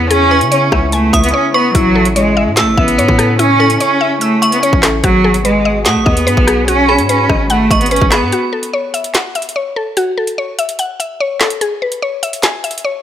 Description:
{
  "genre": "hip hop, drill",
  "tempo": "146 BPM",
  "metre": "4/4",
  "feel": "half-time",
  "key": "unclear",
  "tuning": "A4 = 440 Hz",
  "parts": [
    { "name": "clear cello", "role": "melody", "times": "0.0-8.3 s", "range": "F#3 to C#4", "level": "-13 LUFS", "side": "right 1 dB", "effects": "tape echo" },
    { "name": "mallet-like synth pluck", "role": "accompaniment", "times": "0.0-13.0 s", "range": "E4 to E6", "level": "-17 LUFS", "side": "left 3 dB", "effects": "chorus" },
    { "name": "dark brass ensemble", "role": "sustained chords", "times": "0.0-8.3 s", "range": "B2 to G#4", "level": "-23 LUFS", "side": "left 2 dB", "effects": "none" },
    { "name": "hard-hitting 808-style bass", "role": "bass", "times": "0.0-8.3 s", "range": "G#1 to C#3", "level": "-18 LUFS", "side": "equal", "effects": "none" },
    { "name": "drill drum kit", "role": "drums", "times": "0.1-12.8 s", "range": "handclaps, hi-hat, kick drum, rim click, snare drum", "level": "-16 LUFS", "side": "equal", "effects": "none" },
    { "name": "metallic FM bell", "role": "second line", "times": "0.3-8.3 s", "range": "B5 to E6", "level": "-19 LUFS", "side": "right 3 dB", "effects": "chorus, tape echo" }
  ],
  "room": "light reverb",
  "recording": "none",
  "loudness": "-10 LUFS",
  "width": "side -10 dB against mid",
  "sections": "0.0-8.3 A section; 8.3-13.0 B section",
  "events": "drums muted 1.3-1.7; break 8.3-13.0",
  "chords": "0.0 C#m7; 1.7 A; 5.0 G#m7; 8.3 F#m7; 11.6 C#m7",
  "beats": "| 0.10 0.52 0.93 1.34 | 1.75 2.16 2.57 2.98 | 3.39 3.80 4.21 4.63 | 5.04 5.45 5.86 6.27 | 6.68 7.09 7.50 7.91 | 8.32 8.73 9.15 9.56 | 9.97 10.38 10.79 11.20 | 11.61 12.02 12.43 12.85"
}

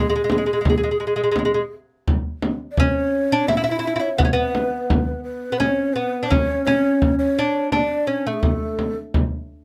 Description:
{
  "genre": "Persian modal ensemble",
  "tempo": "85 BPM",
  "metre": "3/4",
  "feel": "straight",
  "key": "unclear",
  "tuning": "A4 = 439 Hz",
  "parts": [
    { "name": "lute", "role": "melody", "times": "0.0-8.9 s", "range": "G#3 to E4", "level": "-23 LUFS", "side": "equal", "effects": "none" },
    { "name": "breathy mellow low ney", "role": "second line", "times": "0.0-9.0 s", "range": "G#4 to E5", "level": "-28 LUFS", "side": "equal", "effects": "none" },
    { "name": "frame drum", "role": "percussion", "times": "0.3-9.3 s", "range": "none", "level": "-24 LUFS", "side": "equal", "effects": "none" }
  ],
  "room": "light reverb",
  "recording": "none",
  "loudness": "-21 LUFS",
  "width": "mono",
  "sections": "0.0-9.6 A section",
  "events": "none",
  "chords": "none",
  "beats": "0.66 1.37 | 2.08 2.78 3.49 | 4.20 4.90 5.61 | 6.31 7.02 7.72 | 8.43 9.13"
}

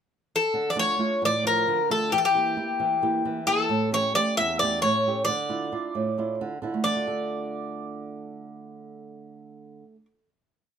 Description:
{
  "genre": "greek folk, Greek bouzouki band",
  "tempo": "266 BPM (eighths)",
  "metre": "7/8",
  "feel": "straight",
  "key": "D harmonic minor",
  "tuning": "A4 = 440 Hz",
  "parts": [
    { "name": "Greek bouzouki", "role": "melody", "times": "0.4-10.1 s", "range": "G4 to E5", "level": "-24 LUFS", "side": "left 2 dB", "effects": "none" },
    { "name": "flamenco guitar", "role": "accompaniment", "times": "0.5-10.3 s", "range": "E2 to A4", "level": "-29 LUFS", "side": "right 4 dB", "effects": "none" }
  ],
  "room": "moderate small room reverb, RT60 0.5 s",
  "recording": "none",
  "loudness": "-23 LUFS",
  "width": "side -7 dB against mid",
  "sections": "0.0-0.5 pickup bar; 0.5-6.8 A section; 6.8-10.0 final chord",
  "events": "none",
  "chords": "0.0 N.C.; 0.5 Dm; 2.1 Edim; 3.7 A7; 5.3 Dmadd9; 6.8 Dm",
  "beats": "0.08 0.31 | 0.54 0.76 0.99 1.21 1.44 1.66 1.89 | 2.12 2.34 2.57 2.79 3.02 3.24 3.47 | 3.69 3.92 4.14 4.37 4.59 4.82 5.04 | 5.27 5.49 5.72 5.94 6.17 6.39 6.62 | 6.84 7.07 7.29 7.52 7.75 7.97 8.20 | 8.42 8.65 8.87 9.10 9.32 9.55 9.78"
}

